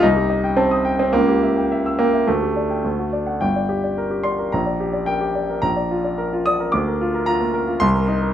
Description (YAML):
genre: classical, virtuoso piano study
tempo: 103-113 BPM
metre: 2/4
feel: rubato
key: G minor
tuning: A4 = 441 Hz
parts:
  - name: warm grand piano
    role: solo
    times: 0.0-8.3 s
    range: G1 to E6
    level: -17 LUFS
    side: equal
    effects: none
room: light reverb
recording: none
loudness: -17 LUFS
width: side -10 dB against mid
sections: 0.0-3.4 A section; 3.4-8.3 B section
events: none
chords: 0.0 Am7b5/C; 1.1 C#dim7; 2.3 Dsus4; 2.8 D; 3.4 Gm; 4.5 Gm/Bb; 5.6 Bb; 6.7 Bb/D; 7.8 Cm7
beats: | 0.03 0.57 | 1.13 1.69 | 2.27 2.85 | 3.42 3.98 | 4.54 5.09 | 5.64 6.19 | 6.73 7.27 | 7.80